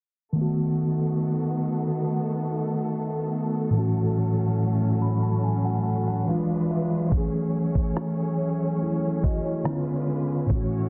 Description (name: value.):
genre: contemporary R&B.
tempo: 71 BPM.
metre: 4/4.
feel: straight.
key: unclear.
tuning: A4 = 440 Hz.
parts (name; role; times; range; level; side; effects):
mellow tine electric piano; accompaniment; 0.3-10.9 s; A2 to B5; -26 LUFS; equal; none.
clear symphonic string section; sustained chords; 0.4-10.9 s; A2 to C#5; -33 LUFS; equal; none.
dusty soul sampler-style drum kit; drums; 7.1-10.7 s; kick drum, rim click; -28 LUFS; equal; vintage 12-bit sampler grit, soft clipping on snare.
room: light reverb, digital ambience.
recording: dense, heavily limited modern master, low-pass filter.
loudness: -25 LUFS.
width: mono.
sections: 0.4-10.9 A section.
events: tine electric piano fill 4.6-7.1.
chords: 0.4 B7; 3.7 F#m7/A; 6.3 E7b9; 7.1 Amaj7; 9.7 C#7b9.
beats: | 0.36 1.20 2.05 2.89 | 3.74 4.58 5.43 6.27 | 7.12 7.96 8.81 9.65 | 10.50.